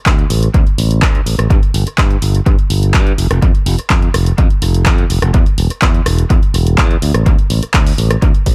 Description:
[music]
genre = filtered disco house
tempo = 125 BPM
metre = 4/4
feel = straight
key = unclear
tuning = A4 = 440 Hz
[part]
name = modern bright fingered electric bass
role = bass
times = 0.1-8.5 s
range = E1 to G2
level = -17 LUFS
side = equal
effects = tube saturation, sidechain pumping, low-pass filter
[part]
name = electronic kick drum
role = drums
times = 0.1-8.5 s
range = none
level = -14 LUFS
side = equal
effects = none
[part]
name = punchy analog drum machine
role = drums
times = 0.1-8.5 s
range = handclaps, hi-hat, rim click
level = -21 LUFS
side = equal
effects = dub echo
[sound]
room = digital ambience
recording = echo-heavy mix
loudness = -13 LUFS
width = mono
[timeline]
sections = 0.0-8.5 A section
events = none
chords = none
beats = 0.06 0.54 1.02 | 1.50 1.98 2.46 2.94 | 3.42 3.90 4.38 4.86 | 5.34 5.82 6.30 6.78 | 7.26 7.74 8.22

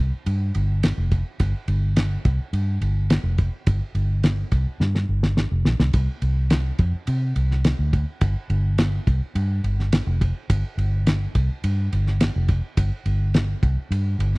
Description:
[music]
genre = straight-eighth soul blues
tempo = 106 BPM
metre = 4/4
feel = straight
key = unclear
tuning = A4 = 440 Hz
[part]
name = vintage muted fingered electric bass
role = bass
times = 0.0-14.4 s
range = F1 to C3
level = -21 LUFS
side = equal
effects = none
[part]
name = cloth-damped thuddy drum kit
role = drums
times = 0.3-14.4 s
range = kick drum, ride cymbal, snare drum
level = -22 LUFS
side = equal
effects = none
[sound]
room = little or no reverb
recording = dry, close 1970s-style studio recording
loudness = -20 LUFS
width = side -28 dB against mid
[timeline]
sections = 0.0-14.4 A section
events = drum fill 4.8-5.9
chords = none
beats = 0.26 0.83 | 1.40 1.97 2.54 3.10 | 3.67 4.24 4.81 5.38 | 5.95 6.51 7.08 7.65 | 8.22 8.79 9.36 9.93 | 10.50 11.06 11.63 12.20 | 12.77 13.34 13.91

